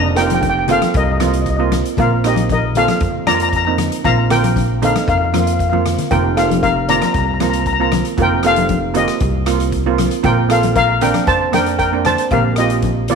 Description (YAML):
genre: calypso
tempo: 116 BPM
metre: 4/4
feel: straight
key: Bb major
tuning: A4 = 437 Hz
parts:
  - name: steel pan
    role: melody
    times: 0.0-13.2 s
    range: F4 to Bb5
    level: -17 LUFS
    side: left 3 dB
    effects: slapback echo
  - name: steel pan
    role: accompaniment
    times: 0.0-13.2 s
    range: Bb3 to G4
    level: -19 LUFS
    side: right 12 dB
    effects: none
  - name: upright bass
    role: bass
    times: 0.0-13.2 s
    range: F1 to F2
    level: -19 LUFS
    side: left 1 dB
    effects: none
  - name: street-band drum kit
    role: drums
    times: 0.2-13.2 s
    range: hi-hat, kick drum, rim click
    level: -24 LUFS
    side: left 1 dB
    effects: none
  - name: congas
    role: percussion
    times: 0.3-13.2 s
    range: none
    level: -23 LUFS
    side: left 11 dB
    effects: none
room: light reverb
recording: 1960s-style stereo with parts hard left and right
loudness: -13 LUFS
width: side -5 dB against mid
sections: 0.0-13.2 A section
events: drum fill 5.7-6.1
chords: 0.0 F7sus4; 2.0 Bbsus2; 6.1 F7sus4; 10.2 Bbsus2